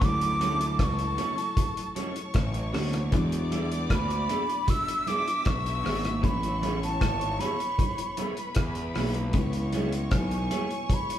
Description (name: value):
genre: lovers rock reggae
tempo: 77 BPM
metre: 4/4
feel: straight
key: A major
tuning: A4 = 440 Hz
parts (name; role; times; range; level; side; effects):
- breathy mellow silver concert flute; melody; 0.0-11.2 s; G#5 to E6; -30 LUFS; right 1 dB; none
- rich studio violin section; second line; 0.0-11.2 s; A4 to E6; -38 LUFS; left 2 dB; tape echo
- mellow tine electric piano; accompaniment; 0.0-11.2 s; F#3 to F#4; -37 LUFS; left 2 dB; slow stereo tremolo, tape echo
- twangy electric guitar; riff; 0.0-10.4 s; G#2 to E3; -38 LUFS; left 4 dB; none
- fuzz picked electric bass; bass; 0.0-10.5 s; G#1 to E2; -30 LUFS; equal; overdrive
- damped 70s drum kit; drums; 0.0-11.2 s; hi-hat, kick drum, rim click; -28 LUFS; equal; none
- congas; percussion; 0.0-11.1 s; none; -37 LUFS; right 2 dB; none
- electric guitar through a small old amp; stabs; 0.4-10.6 s; B3 to D5; -36 LUFS; right 2 dB; none
room: moderate large studio reverb, RT60 1.1 s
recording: band playing live in one room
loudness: -25 LUFS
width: side -11 dB against mid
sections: 0.0-11.2 A section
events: none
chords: 0.0 Dmaj7; 3.1 E7; 6.2 Amaj9; 9.3 C#m7